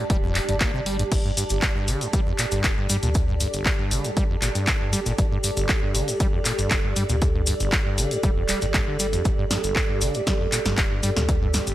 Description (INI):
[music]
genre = acid house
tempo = 118 BPM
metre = 4/4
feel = straight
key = unclear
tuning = A4 = 440 Hz
[part]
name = acid bass, saw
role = riff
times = 0.0-11.7 s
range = G1 to Bb3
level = -28 LUFS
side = equal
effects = tube saturation
[part]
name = granular cloud pad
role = texture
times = 0.0-11.7 s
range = G4 to A5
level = -30 LUFS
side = right 1 dB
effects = built-in reverb, sidechain pumping
[part]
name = warm sub bass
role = bass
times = 0.1-11.7 s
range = D1 to G2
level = -27 LUFS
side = equal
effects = sidechain pumping
[part]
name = electronic kick drum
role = drums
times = 0.1-11.4 s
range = none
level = -24 LUFS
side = equal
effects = none
[part]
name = punchy analog drum machine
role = drums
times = 0.1-11.7 s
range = crash cymbal, handclaps, hi-hat, snare drum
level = -27 LUFS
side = equal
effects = none
[part]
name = dark analog pad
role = sustained chords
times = 2.0-11.7 s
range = A4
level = -33 LUFS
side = right 4 dB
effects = chorus, phaser, sidechain pumping
[part]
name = cabasa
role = percussion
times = 1.1-11.7 s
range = none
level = -30 LUFS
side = left 2 dB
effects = none
[sound]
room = light reverb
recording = none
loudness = -20 LUFS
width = side -14 dB against mid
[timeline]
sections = 0.0-11.7 A section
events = none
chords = 0.0 G5